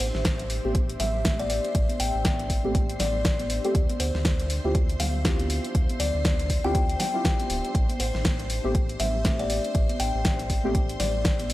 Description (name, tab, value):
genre	deep house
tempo	120 BPM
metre	4/4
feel	swing 59% on 16ths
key	unclear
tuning	A4 = 440 Hz
part	buzzing kalimba	melody	0.0-11.4 s	C5 to G5	-31 LUFS	left 3 dB	analog delay
part	sub bass with octave	bass	0.0-11.5 s	D1 to D2	-30 LUFS	equal	transformer saturation, sidechain pumping
part	deep house drum kit	drums	0.0-11.5 s	hi-hat, snare drum	-30 LUFS	equal	none
part	ethereal airy pad	texture	0.0-11.5 s	D4 to E5	-40 LUFS	left 1 dB	ensemble chorus, built-in reverb, sidechain pumping
part	string machine, violins	texture	0.0-11.5 s	C5 to C6	-41 LUFS	left 1 dB	ensemble chorus, sidechain pumping
part	electronic kick drum	drums	0.2-11.4 s	none	-25 LUFS	equal	none
part	congas and bongos	percussion	0.2-11.5 s	none	-36 LUFS	right 2 dB	none
part	deep mellow chord stab	stabs	0.6-10.8 s	A3 to G4	-32 LUFS	equal	chorus, cassette tape, sidechain pumping, tape echo
room	little or no reverb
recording	dry, gritty hardware recording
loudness	-23 LUFS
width	side -16 dB against mid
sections	0.0-11.5 A section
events	none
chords	0.0 Am7; 3.7 Dm11; 7.7 Am7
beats	0.25 0.75 1.25 | 1.75 2.25 2.75 3.25 | 3.75 4.25 4.75 5.25 | 5.75 6.25 6.75 7.25 | 7.75 8.25 8.75 9.25 | 9.75 10.25 10.75 11.25